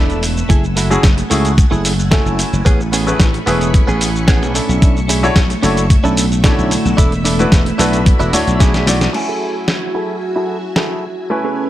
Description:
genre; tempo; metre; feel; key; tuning
nu-disco, nu disco; 111 BPM; 4/4; straight; F# minor; A4 = 440 Hz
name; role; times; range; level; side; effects
clear baby grand piano; accompaniment; 0.0-11.7 s; D3 to G#5; -20 LUFS; left 1 dB; sidechain pumping, low-pass filter, tape echo
string machine, full ensemble; sustained chords; 0.0-11.7 s; A3 to E6; -23 LUFS; equal; ensemble chorus, vintage 12-bit sampler grit, sidechain pumping
direct-recorded clean electric guitar; riff; 0.0-11.7 s; A3 to B4; -21 LUFS; right 2 dB; analog chorus, low-pass filter, tape echo
slap bass; bass; 0.0-9.1 s; E1 to D2; -17 LUFS; equal; sidechain pumping
dusty soul sampler-style drum kit; drums; 0.1-10.9 s; crash cymbal, hi-hat, shaker, snare drum; -19 LUFS; equal; none
electronic kick drum; drums; 0.5-8.7 s; none; -12 LUFS; equal; overdrive
room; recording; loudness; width
digital ambience; none; -12 LUFS; side -13 dB against mid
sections
0.0-9.1 A section; 9.1-11.7 B section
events
drum fill 8.6-9.1; filter sweep on grand piano 9.1-11.7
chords
0.5 F#m9; 2.7 Amaj9; 4.6 Bm11; 7.0 E7sus4; 9.1 F#m9

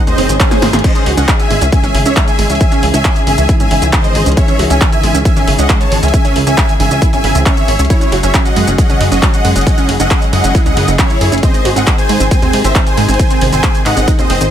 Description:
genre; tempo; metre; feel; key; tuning
uplifting trance; 136 BPM; 4/4; straight; C# harmonic minor; A4 = 439 Hz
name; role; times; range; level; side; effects
dark studio string section; sustained chords; 0.0-14.5 s; B#2 to G#4; -20 LUFS; left 3 dB; sidechain pumping
wide unison pluck; arpeggios; 0.0-14.5 s; B#2 to C#5; -18 LUFS; right 5 dB; sidechain pumping, digital delay
swell; sound effects; 0.1-0.8 s; none; -21 LUFS; right 3 dB; none
supersaw chords; melody; 0.1-14.4 s; E4 to A5; -17 LUFS; equal; ensemble chorus, sidechain pumping, digital delay
plucky analog bass; bass; 0.1-14.5 s; F#1 to G#2; -15 LUFS; equal; sidechain pumping
punchy analog drum machine; drums; 0.1-14.5 s; crash cymbal, handclaps, hi-hat, ride cymbal, shaker, snare drum; -18 LUFS; equal; sidechain pumping on hats, sidechain pumping on perc, sidechain pumping on cymbals
electronic kick drum; drums; 0.4-14.2 s; none; -12 LUFS; equal; overdrive
room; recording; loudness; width
digital ambience; none; -9 LUFS; side -10 dB against mid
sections
0.0-14.5 A section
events
swell 0.1-0.8; drum fill 0.5-0.8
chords
0.0 G#; 0.8 C#madd9; 7.9 F#sus2; 11.4 G#

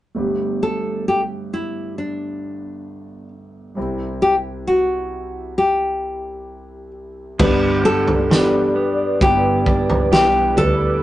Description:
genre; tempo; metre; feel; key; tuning
pop ballad; 66 BPM; 4/4; straight; G major; A4 = 440 Hz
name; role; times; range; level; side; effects
warm concert grand piano; accompaniment; 0.1-11.0 s; G1 to G4; -23 LUFS; equal; none
nylon-string guitar; melody; 0.6-11.0 s; D4 to B4; -19 LUFS; left 1 dB; none
lush unison pad; sustained chords; 7.4-11.0 s; B4 to D6; -24 LUFS; right 1 dB; chorus, phaser
direct-recorded clean electric guitar; arpeggios; 7.4-11.0 s; G2 to G4; -29 LUFS; right 4 dB; none
vintage muted fingered electric bass; bass; 7.4-11.0 s; G1 to D2; -25 LUFS; right 1 dB; none
loose indie drum kit; drums; 7.4-10.8 s; crash cymbal, kick drum, snare drum, toms; -19 LUFS; right 1 dB; none
room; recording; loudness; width
light reverb; rough rehearsal-room recording, nothing above 10.4 kHz; -16 LUFS; side -14 dB against mid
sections
0.2-7.4 A section; 7.4-11.0 B section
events
none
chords
0.2 Gadd9; 3.8 C; 7.4 G

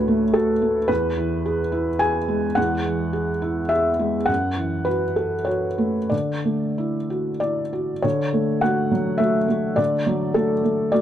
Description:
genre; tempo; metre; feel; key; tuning
neoclassical minimalist piano; 90-109 BPM; 3/4; rubato; D lydian; A4 = 441 Hz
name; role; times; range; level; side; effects
felt-muted upright piano; solo; 0.0-11.0 s; D2 to G#5; -19 LUFS; equal; none
room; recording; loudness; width
light reverb; dark, warm production; -20 LUFS; side -10 dB against mid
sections
0.0-8.0 A section; 8.0-11.0 B section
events
none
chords
0.0 Dmaj7; 0.9 E; 4.3 F#m7; 6.1 Dadd9; 8.0 Dmaj7

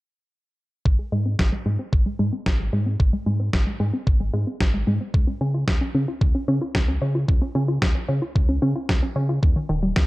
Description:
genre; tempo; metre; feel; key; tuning
italo disco; 112 BPM; 4/4; straight; Ab major; A4 = 440 Hz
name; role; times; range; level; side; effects
round analog bass; bass; 0.9-10.1 s; Eb1 to Db3; -24 LUFS; equal; none
electronic kick drum; drums; 0.9-10.1 s; none; -21 LUFS; equal; none
analog pluck; arpeggios; 1.0-10.0 s; Eb3 to F4; -26 LUFS; equal; chorus, cassette tape, digital delay
electronic snare drum; drums; 1.4-10.1 s; none; -27 LUFS; equal; none
room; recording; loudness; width
light reverb, digital ambience; dark, warm production; -20 LUFS; side -19 dB against mid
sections
0.9-10.1 A section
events
filter sweep on synth arpeggio sound 0.9-10.1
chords
0.9 Ab; 5.1 Db; 9.4 Eb

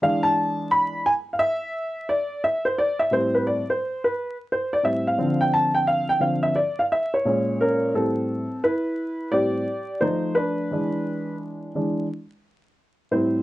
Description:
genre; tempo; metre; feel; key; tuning
hip hop; 87 BPM; 4/4; swing 63% on 16ths; A minor; A4 = 436 Hz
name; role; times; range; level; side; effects
dark upright piano; solo; 0.0-13.4 s; A2 to B5; -21 LUFS; equal; none
room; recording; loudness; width
moderate studio ambience, RT60 0.5 s; vinyl crackle, nothing above 10.3 kHz; -21 LUFS; side -16 dB against mid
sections
0.0-7.9 A section; 7.9-13.4 B section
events
upright piano solo 0.0-7.9, 7.9-13.4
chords
0.0 E7; 2.1 Am7; 5.2 Dm7; 7.3 Bbm7; 7.9 Am9; 10.0 F7; 10.7 E7

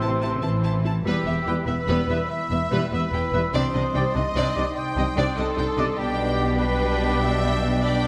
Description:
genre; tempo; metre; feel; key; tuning
cinematic, heroic adventure film score; 98 BPM (dotted quarters); 12/8; straight; unclear; A4 = 440 Hz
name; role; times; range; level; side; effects
rich symphonic violin section; melody; 0.0-8.1 s; B4 to A5; -34 LUFS; equal; none
mellow large flute ensemble; second line; 0.0-8.1 s; D6 to E6; -37 LUFS; equal; none
rich symphonic violin section; second line; 0.0-8.1 s; G4 to G5; -35 LUFS; equal; none
warm clarinet; second line; 0.0-8.1 s; G4 to G5; -35 LUFS; equal; none
warm oboe; second line; 0.0-8.1 s; B5 to C6; -35 LUFS; equal; none
rich symphonic viola section; accompaniment; 0.0-8.1 s; G3 to E4; -33 LUFS; equal; none
dark French horn section; sustained chords; 0.0-8.1 s; E3 to E4; -37 LUFS; equal; none
concert harp; arpeggios; 0.0-8.1 s; A2 to B4; -37 LUFS; equal; none
dark trumpet section; stabs; 0.0-8.1 s; B4 to D5; -34 LUFS; equal; none
rich symphonic cello section; bass; 0.0-8.1 s; E2 to E3; -29 LUFS; equal; none
warm studio double bass section; bass; 0.0-8.1 s; E1 to C2; -30 LUFS; equal; none
room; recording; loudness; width
moderate scoring stage reverb, RT60 1.9 s; none; -23 LUFS; mono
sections
0.0-8.1 A section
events
none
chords
0.0 Am; 1.0 Em; 3.5 Cmadd9; 6.0 G/B

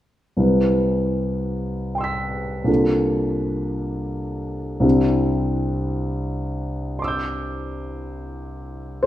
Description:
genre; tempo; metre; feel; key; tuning
classical, impressionist solo piano; 55 BPM (dotted quarters); 6/8; uneven beats, rubato; C major; A4 = 440 Hz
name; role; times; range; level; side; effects
clear concert grand piano; solo; 0.4-9.1 s; C2 to B6; -20 LUFS; equal; none
room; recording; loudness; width
moderate recital hall reverb, RT60 1.4 s; none; -20 LUFS; side -13 dB against mid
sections
0.4-9.1 A section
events
none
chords
0.4 Cmaj7; 2.7 Bbmaj7/C; 4.8 Cadd9

